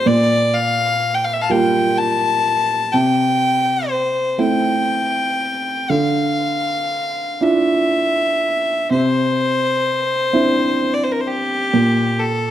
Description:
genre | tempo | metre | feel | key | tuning
celtic folk, Celtic slow air | 39-44 BPM (dotted quarters) | 6/8 | rubato | unclear | A4 = 439 Hz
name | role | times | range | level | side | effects
clear fiddle | melody | 0.0-12.5 s | G4 to A5 | -18 LUFS | left 1 dB | none
dark upright piano | accompaniment | 0.0-12.5 s | Bb2 to F4 | -19 LUFS | right 1 dB | none
room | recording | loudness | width
moderate recital hall reverb, RT60 1.4 s | none | -15 LUFS | side -11 dB against mid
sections
0.0-12.5 A section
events
none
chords
0.1 Gm7/Bb; 2.9 C6; 5.9 Dmadd9; 8.9 Cadd9; 11.7 N.C.

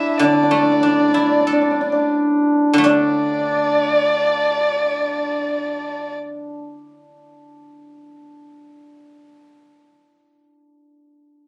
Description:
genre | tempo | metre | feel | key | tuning
chinese traditional, Chinese chamber ensemble | 44 BPM | 4/4 | rubato | unclear | A4 = 440 Hz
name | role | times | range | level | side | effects
dark erhu | melody | 0.0-6.1 s | D5 to E5 | -23 LUFS | equal | none
hammered dulcimer | second line | 0.0-6.6 s | D4 to E4 | -21 LUFS | equal | none
guzheng | accompaniment | 0.0-9.4 s | D3 to A4 | -24 LUFS | equal | none
room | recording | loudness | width
moderate studio ambience, RT60 0.5 s | recorded on a phone in the room, club reverb, compression | -18 LUFS | mono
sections
0.0-2.9 A section; 2.9-8.4 B section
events
slowing down 0.0-2.9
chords
none

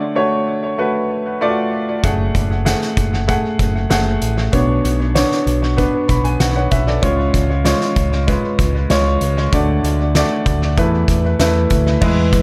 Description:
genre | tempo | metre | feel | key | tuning
piano-driven pop | 96 BPM | 4/4 | straight | F# minor | A4 = 441 Hz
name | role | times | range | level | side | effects
clear upright piano | accompaniment | 0.0-12.4 s | B2 to B5 | -20 LUFS | equal | tape echo
overdriven picked electric bass | bass | 2.0-12.4 s | F#1 to E2 | -20 LUFS | equal | none
loose indie drum kit | drums | 2.0-12.4 s | crash cymbal, hi-hat, kick drum, snare drum | -22 LUFS | equal | tape echo
room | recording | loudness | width
moderate spring reverb, RT60 1.7 s, small room ambience | echo-heavy mix | -17 LUFS | mono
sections
0.0-12.0 A section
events
upright piano fill 5.8-7.0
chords
0.0 D; 2.0 F#madd9; 4.5 Bmadd9; 7.0 C#; 9.5 D; 10.8 Esus4

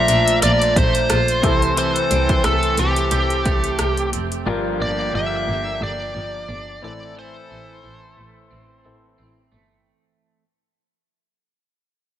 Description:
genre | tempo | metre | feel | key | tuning
1980s-style pop | 89 BPM | 4/4 | swing 55% on 16ths | C mixolydian | A4 = 440 Hz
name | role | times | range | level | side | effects
biting lead guitar | melody | 0.0-9.2 s | G4 to E5 | -21 LUFS | equal | overdrive, ping-pong delay
clear concert grand piano | accompaniment | 0.0-9.9 s | G2 to A5 | -28 LUFS | left 3 dB | none
electric guitar at the edge of break-up | riff | 0.0-10.4 s | E3 to G4 | -27 LUFS | right 7 dB | analog chorus, ping-pong delay
clear horn section | stabs | 0.0-9.5 s | D3 to Bb5 | -28 LUFS | left 5 dB | none
rich double bass | bass | 0.1-9.8 s | F1 to C2 | -23 LUFS | equal | none
80s electronic pad drums | drums | 0.1-4.5 s | hi-hat, kick drum, rim click | -22 LUFS | equal | overdrive
room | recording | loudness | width
light reverb | none | -16 LUFS | side -11 dB against mid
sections
0.0-9.9 A section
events
fade-out 0.0-9.9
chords
0.0 Bbmaj7; 1.4 C6; 4.5 Gm7; 6.8 C6

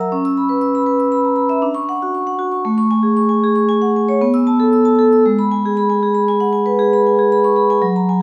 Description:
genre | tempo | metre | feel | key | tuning
classical, contemporary piece for solo vibraphone | 116 BPM | 5/4 | rubato | unclear | A4 = 439 Hz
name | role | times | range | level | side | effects
vibraphone with medium hard mallets | solo | 0.0-8.2 s | F#3 to E6 | -15 LUFS | equal | none
room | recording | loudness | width
moderate recital hall reverb, RT60 1.8 s | small room ambience | -15 LUFS | mono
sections
0.0-8.2 A section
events
none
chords
0.1 C#m7; 1.6 Dmaj7; 2.6 Amaj7; 4.2 B7sus4; 5.2 G#m7

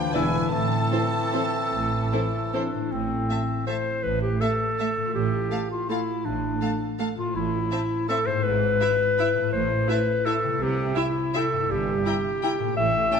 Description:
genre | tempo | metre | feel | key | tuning
classical, orchestral ballroom waltz | 143-180 BPM | 3/4 | rubato | A minor | A4 = 444 Hz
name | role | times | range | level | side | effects
rich studio violin section | melody | 0.0-13.2 s | G5 to B5 | -35 LUFS | left 3 dB | none
clear clarinet | second line | 0.0-13.2 s | C4 to E5 | -26 LUFS | left 1 dB | none
silver concert flute | second line | 0.0-2.7 s | D6 to E6 | -31 LUFS | equal | none
warm bassoon | accompaniment | 0.0-2.7 s | E3 to F3 | -33 LUFS | right 1 dB | none
concert harp | arpeggios | 0.0-13.2 s | G2 to E5 | -32 LUFS | left 9 dB | none
mellow cor anglais | second line | 0.1-2.7 s | A4 to B4 | -34 LUFS | right 4 dB | none
rich studio violin section | second line | 0.1-13.2 s | A4 to G5 | -35 LUFS | left 2 dB | none
mellow French horn section | sustained chords | 0.1-2.7 s | E3 to D4 | -36 LUFS | left 4 dB | none
clear studio cello section | bass | 0.1-13.1 s | E2 to C3 | -33 LUFS | right 4 dB | none
rich studio double bass section | bass | 0.1-13.1 s | E1 to C2 | -31 LUFS | right 4 dB | none
dark studio viola section | accompaniment | 0.2-13.2 s | A3 to E4 | -33 LUFS | right 1 dB | none
room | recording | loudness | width
wet scoring stage reverb, RT60 2.2 s | none | -22 LUFS | side -6 dB against mid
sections
0.0-2.9 A section; 2.9-13.2 A section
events
none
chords
0.1 E7; 0.5 Am; 5.1 Dm/A; 7.4 Am; 8.4 E/G#; 9.5 Am; 10.6 C; 11.7 Edim/G

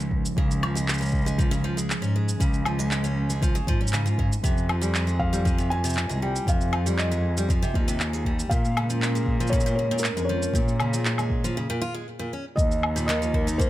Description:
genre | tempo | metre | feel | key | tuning
folktronica | 118 BPM | 4/4 | straight | Db lydian | A4 = 440 Hz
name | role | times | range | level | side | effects
warbly tape-like pad | sustained chords | 0.0-13.7 s | F3 to Ab5 | -35 LUFS | equal | chorus, built-in reverb
dark cello | bass | 0.0-13.7 s | C2 to Bb2 | -26 LUFS | equal | none
electronic shaker, woodblock and handclaps | drums | 0.0-13.7 s | none | -30 LUFS | equal | small room ambience
electronic kick drum | drums | 0.1-13.7 s | none | -25 LUFS | equal | small room ambience
picked steel-string acoustic guitar | arpeggios | 0.4-13.7 s | Bb2 to F4 | -31 LUFS | equal | digital delay
felt-muted upright piano | melody | 5.2-13.7 s | Bb4 to Ab5 | -30 LUFS | equal | digital delay
room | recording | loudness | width
light reverb | none | -22 LUFS | side -15 dB against mid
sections
0.0-12.6 A section; 12.6-13.7 B section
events
break 11.6-12.6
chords
0.4 Db; 4.4 Fmadd9; 8.5 Bbm7; 12.6 Ebsus2

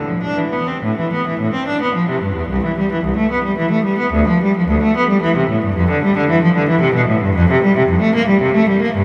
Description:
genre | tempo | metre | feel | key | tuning
classical, baroque-style suite movement for unaccompanied cello | 111 BPM | 3/4 | uneven beats, rubato | A minor | A4 = 440 Hz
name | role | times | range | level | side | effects
rich cello | solo | 0.0-9.0 s | C2 to D4 | -16 LUFS | equal | none
room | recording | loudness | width
wet huge ambient reverb, RT60 8.5 s | in a vast, echoing space | -16 LUFS | mono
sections
0.8-9.0 A section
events
none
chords
none

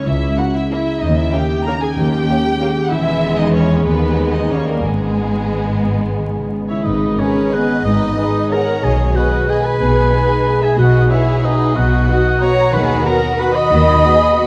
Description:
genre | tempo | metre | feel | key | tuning
classical | 170-203 BPM | 3/4 | rubato | G# minor | A4 = 440 Hz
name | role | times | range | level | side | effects
rich chamber violin section | melody | 0.0-14.5 s | G#4 to B5 | -27 LUFS | equal | none
rich studio viola section | accompaniment | 0.0-14.5 s | G#3 to D#5 | -24 LUFS | equal | none
concert harp | arpeggios | 0.0-14.5 s | G#2 to B5 | -23 LUFS | equal | none
rich chamber double bass section | bass | 0.1-14.0 s | E1 to D#2 | -23 LUFS | equal | none
warm studio cello section | bass | 0.1-14.0 s | C#2 to D#3 | -23 LUFS | equal | none
rich chamber violin section | second line | 0.4-14.5 s | G3 to D#5 | -28 LUFS | equal | none
dark clarinet | second line | 6.7-14.5 s | B3 to D#5-21c | -24 LUFS | equal | none
warm oboe | second line | 6.7-14.5 s | B4 to D#6 | -23 LUFS | equal | none
warm French horn section | sustained chords | 7.2-14.5 s | B3 to G#4 | -27 LUFS | equal | none
room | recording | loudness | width
wet concert hall reverb, RT60 2.0 s | dark, warm production, vinyl crackle | -16 LUFS | mono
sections
0.0-6.9 A section; 6.9-14.5 B section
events
none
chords
0.0 A#dim/C#; 1.0 D#7; 2.9 E; 3.9 G#m/D#; 4.5 D#7; 4.8 G#m; 8.8 G#m/B; 10.8 B; 12.7 B/D#

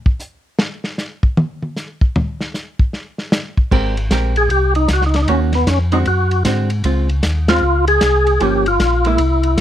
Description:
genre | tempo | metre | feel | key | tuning
soul jazz organ trio | 154 BPM | 4/4 | swing 64% on 8ths | Ab major | A4 = 440 Hz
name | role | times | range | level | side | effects
warm soul drum kit | drums | 0.1-9.6 s | crash cymbal, hi-hat, kick drum, ride cymbal, snare drum, toms | -18 LUFS | equal | none
vintage hollow-body jazz guitar | accompaniment | 3.7-9.2 s | D3 to Bb4 | -20 LUFS | right 4 dB | none
mellow tonewheel organ | bass | 3.7-9.6 s | G1 to G#2 | -17 LUFS | equal | slow rotary speaker
percussive tonewheel organ | melody | 4.4-9.6 s | Cb4 to Ab4 | -16 LUFS | left 1 dB | slow rotary speaker, overdrive, chorus vibrato
room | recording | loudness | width
little or no reverb | close, detailed microphones | -14 LUFS | side -11 dB against mid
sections
0.0-3.7 A section; 3.7-9.6 B section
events
hollow-body jazz guitar solo 0.0-3.7; drum solo 0.0-3.7; band accent 7.4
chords
0.0 N.C.; 3.7 Abmaj9; 5.3 Ebm7; 6.1 D7#11; 6.8 Dbmaj7; 8.4 Gm7b5

